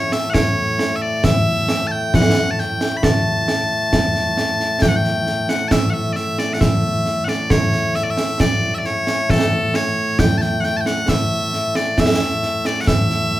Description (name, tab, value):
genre	scottish traditional, Scottish pipe music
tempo	67 BPM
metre	3/4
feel	straight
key	A mixolydian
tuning	A4 = 440 Hz
part	loud bright bagpipes	melody	0.0-13.4 s	A2 to B5	-19 LUFS	left 1 dB	none
part	concert snare drum and concert bass drum	drums	0.1-13.2 s	none	-18 LUFS	right 1 dB	none
room	wet studio reverb, RT60 0.6 s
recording	band playing live in one room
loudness	-16 LUFS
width	side -15 dB against mid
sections	0.0-4.8 A section; 4.8-13.4 B section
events	none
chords	none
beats	0.34 1.24 | 2.13 3.03 3.92 | 4.82 5.71 6.61 | 7.50 8.40 9.29 | 10.19 11.09 11.98 | 12.88